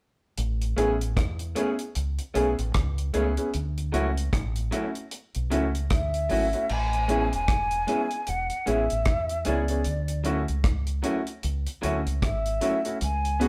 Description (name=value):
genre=lovers rock reggae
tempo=76 BPM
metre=4/4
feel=swing 60% on 16ths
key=A major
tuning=A4 = 441 Hz
part: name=deep dub fingered electric bass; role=bass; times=0.4-13.5 s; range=E1 to E2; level=-30 LUFS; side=equal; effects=none
part: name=deep reggae drum kit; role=drums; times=0.4-13.5 s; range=crash cymbal, hi-hat, kick drum, rim click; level=-32 LUFS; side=equal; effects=none
part: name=warm concert grand piano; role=accompaniment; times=0.8-13.5 s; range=A3 to G#4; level=-31 LUFS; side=equal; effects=none
part: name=electric guitar through a small old amp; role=stabs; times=0.8-13.5 s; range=F#3 to G#4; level=-32 LUFS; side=equal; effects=none
part: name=breathy mellow silver concert flute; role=melody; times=5.9-13.5 s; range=D5 to G#5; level=-30 LUFS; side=equal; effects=none
room=moderate studio reverb, RT60 0.7 s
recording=band playing live in one room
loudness=-27 LUFS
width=mono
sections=0.4-6.7 A section; 6.7-13.5 B section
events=none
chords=0.4 Amaj7; 3.5 Dmaj9; 6.7 Amaj7; 9.9 Dmaj9